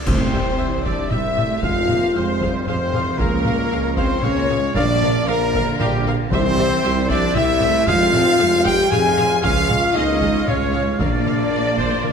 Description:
cinematic, epic orchestral film score; 115 BPM; 3/4; straight; C mixolydian; A4 = 440 Hz
warm symphonic violin section; melody; 0.0-12.1 s; G4 to Ab5; -29 LUFS; left 5 dB
flute section; second line; 0.0-12.1 s; G4 to Ab5; -27 LUFS; left 2 dB
dark French horn section; sustained chords; 0.0-12.1 s; G3 to Ab4; -22 LUFS; left 4 dB
clear trumpet; stabs; 0.0-12.1 s; G4 to Ab5; -25 LUFS; right 1 dB
cymbal swell and sub drop; sound effects; 0.0-1.6 s; -31 LUFS; left 1 dB
warm symphonic violin section; second line; 0.1-12.1 s; G4 to Ab5; -28 LUFS; left 2 dB
rich studio viola section; accompaniment; 0.1-12.1 s; G4 to F5; -30 LUFS; right 1 dB
warm woodwind section; sustained chords; 0.1-12.1 s; G3 to F5; -31 LUFS; equal
warm symphonic cello section; bass; 0.1-12.1 s; D3 to C4; -27 LUFS; right 3 dB
warm symphonic double bass section; bass; 0.1-12.1 s; Bb1 to F2; -26 LUFS; right 5 dB
warm tuba; bass; 0.1-12.1 s; F1 to Db2; -27 LUFS; right 5 dB
taiko ensemble; drums; 0.1-12.1 s; -25 LUFS; equal
clash cymbals, concert bass drum and cymbal swell; percussion; 0.1-1.1, 9.4-12.1 s; -29 LUFS; equal
timpani; percussion; 0.1-0.8, 6.3-7.1 s; C3; -28 LUFS; left 1 dB
wet scoring stage reverb, RT60 1.7 s; -16 LUFS; side -6 dB against mid
0.1-12.1 A section
band accent 0.1-0.6; impact 0.1-1.6
0.1 C; 1.6 Fm; 3.2 Db; 4.8 Bb; 6.3 C; 7.9 Fm; 9.4 Db; 11.0 Bb
| 0.07 0.59 1.11 | 1.63 2.15 2.67 | 3.19 3.71 4.24 | 4.75 5.28 5.80 | 6.32 6.84 7.36 | 7.88 8.40 8.92 | 9.44 9.96 10.48 | 11.00 11.52 12.04

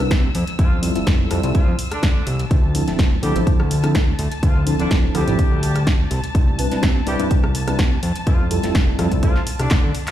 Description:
filtered disco house; 125 BPM; 4/4; swing 53% on 16ths; A4 = 439 Hz
mellow tine electric piano; accompaniment; 0.0-9.3 s; F3 to C5; -23 LUFS; equal; fast stereo tremolo, phaser, vintage 12-bit sampler grit, sidechain pumping, low-pass filter
rich studio string section; sustained chords; 0.0-10.1 s; A5 to E6; -33 LUFS; left 2 dB; sidechain pumping, low-pass filter
fat analog bass; bass; 0.0-9.9 s; D1 to D3; -22 LUFS; equal; tube saturation, sidechain pumping, low-pass filter
punchy analog drum machine; drums; 0.0-10.1 s; handclaps, hi-hat, rim click, snare drum; -26 LUFS; equal; overdrive, sidechain pumping on hats
electronic kick drum; drums; 0.1-9.8 s; -17 LUFS; equal
maracas; percussion; 0.1-10.1 s; -45 LUFS; right 3 dB
bright horn section; melody; 0.6-9.9 s; D3 to G4; -30 LUFS; left 1 dB; sidechain pumping, low-pass filter, dub echo
little or no reverb; played on a big sound system in a bare room, large studio reverb; -16 LUFS; side -12 dB against mid
0.0-10.1 A section
filter sweep 0.0-10.1; drum fill 9.7-10.1
0.3 Fmaj9; 2.5 Dm7; 6.1 Cmaj9; 8.0 Fmaj9
0.11 | 0.59 1.07 1.55 2.03 | 2.51 2.99 3.47 3.95 | 4.43 4.91 5.39 5.87 | 6.35 6.83 7.31 7.79 | 8.27 8.75 9.23 9.71

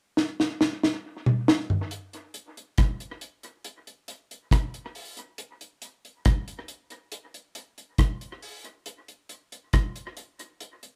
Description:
reggae; 69 BPM; 4/4; straight
deep reggae drum kit; drums; 0.2-11.0 s; hi-hat, kick drum, rim click, snare drum, toms; -27 LUFS; equal
moderate studio reverb, RT60 0.5 s; band playing live in one room; -26 LUFS; mono
0.0-1.9 A section; 1.9-11.0 B section
drum fill 0.2-1.9
0.17 1.03 | 1.90 2.77 3.64 4.51 | 5.38 6.25 7.12 7.99 | 8.86 9.73 10.60

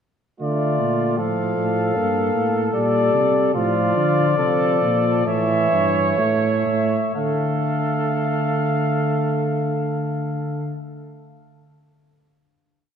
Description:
classical, imitative canzona for brass ensemble; 60-78 BPM; 4/4; straight; D minor; A4 = 441 Hz
mellow cornet; melody; 0.4-10.7 s; D5 to F5; -24 LUFS; left 6 dB
warm flugelhorn; second line; 0.4-10.7 s; F4 to C#5; -24 LUFS; right 4 dB
warm euphonium; accompaniment; 0.4-10.7 s; E3 to Bb3; -25 LUFS; right 2 dB
mellow tuba; bass; 0.4-10.7 s; G2 to D3; -23 LUFS; equal
wet church reverb, RT60 2.5 s; -18 LUFS; side -8 dB against mid
0.4-7.1 exposition; 7.1-11.1 final chord
slowing down 0.4-9.1
0.4 Dm; 2.0 Gm; 3.5 Dm/A; 5.3 A; 7.1 Dm
| 0.41 1.18 1.96 2.74 | 3.54 4.38 5.27 6.18 | 7.15 8.14 9.13 10.11

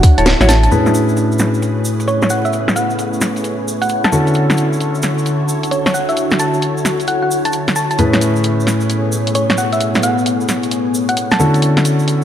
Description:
UK garage, two-step garage; 132 BPM; 4/4; swing 65% on 16ths; A major; A4 = 440 Hz
soft string machine; sustained chords; 0.0-12.2 s; D3 to C#5; -24 LUFS; right 1 dB; ensemble chorus, sidechain pumping
garage drum kit; drums; 0.0-12.2 s; hi-hat, snare drum; -19 LUFS; equal; low-pass filter on hats, low-pass filter on snare, low-pass filter on perc
tube shaker; percussion; 0.0-12.2 s; -28 LUFS; right 2 dB
deep dark ambient pad; texture; 0.0-12.2 s; D3 to G#5; -22 LUFS; left 1 dB; chorus, built-in reverb, sidechain pumping
thumb-piano-like synth pluck; melody; 0.2-11.5 s; C#5 to A5; -20 LUFS; equal; chorus, dub echo
dark grand piano; stabs; 0.2-12.2 s; A2 to C#5; -17 LUFS; left 1 dB
dark detuned saw bass; bass; 0.2-0.7 s; D1 to A1; -13 LUFS; equal
moderate lush hall reverb, RT60 2.0 s, digital ambience; dark, warm production; -13 LUFS; side -10 dB against mid
0.7-12.2 A section
filter sweep on drum 0.7-12.2
0.0 Dmaj9; 0.7 Amaj9; 4.1 Dmaj9; 8.0 Amaj9; 11.4 Dmaj9
0.26 | 0.71 1.17 1.62 2.08 | 2.53 2.99 3.44 3.90 | 4.35 4.80 5.26 5.71 | 6.17 6.62 7.08 7.53 | 7.99 8.44 8.90 9.35 | 9.80 10.26 10.71 11.17 | 11.62 12.08

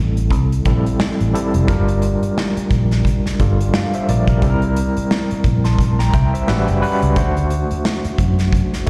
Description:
lush 1970s-style soul; 88 BPM; 4/4; swing 58% on 16ths; G dorian; A4 = 441 Hz
overdriven tine electric piano; accompaniment; 0.0-8.9 s; G3 to C6; -23 LUFS; equal; fast tremolo, slapback echo
vintage muted fingered electric bass; bass; 0.0-8.9 s; F1 to F#2; -20 LUFS; equal
modern studio drum kit; drums; 0.2-8.9 s; hi-hat, kick drum, snare drum; -23 LUFS; equal
small room ambience; live gig heard through the venue's PA, recital hall reverb; -17 LUFS; mono
0.0-8.9 A section
tine electric piano fill 6.1-7.2
0.0 Am7; 1.7 Gm7; 4.4 C7; 6.5 A13; 7.2 D7
0.31 0.99 | 1.68 2.36 3.05 3.73 | 4.42 5.11 5.79 6.48 | 7.16 7.85 8.53

